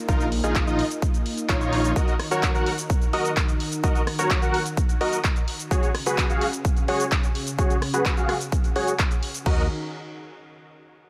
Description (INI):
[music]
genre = EDM, festival progressive house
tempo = 128 BPM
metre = 4/4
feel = straight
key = Eb minor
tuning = A4 = 439 Hz
[part]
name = lush unison pad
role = sustained chords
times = 0.0-9.7 s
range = Db3 to Bb4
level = -36 LUFS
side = equal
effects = chorus, sidechain pumping
[part]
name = dense compressed supersaw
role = riff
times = 0.1-9.6 s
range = Eb4 to Gb5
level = -28 LUFS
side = equal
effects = cassette tape, sidechain pumping, low-pass filter, dub echo
[part]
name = detuned saw bass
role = bass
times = 0.1-1.9, 9.5-9.7 s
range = Bb1 to Eb2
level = -30 LUFS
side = equal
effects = sidechain pumping
[part]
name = big-room dance drum kit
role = drums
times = 0.1-9.6 s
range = cabasa, crash cymbal, handclaps, hi-hat, rim click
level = -32 LUFS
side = equal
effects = none
[part]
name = electronic kick drum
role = drums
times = 0.1-9.6 s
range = none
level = -26 LUFS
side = equal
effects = none
[sound]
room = little or no reverb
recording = none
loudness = -23 LUFS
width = mono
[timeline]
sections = 0.0-9.5 A section; 9.5-11.1 B section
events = filter sweep on supersaw synth 0.0-9.5; filter sweep on analog synth pad 0.0-9.5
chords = 0.0 Bbsus4; 2.0 Ebm; 5.7 Dbsus4; 9.5 Ebm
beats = | 0.09 0.56 1.02 1.49 | 1.96 2.43 2.90 3.37 | 3.84 4.30 4.77 5.24 | 5.71 6.18 6.65 7.12 | 7.59 8.05 8.52 8.99 | 9.46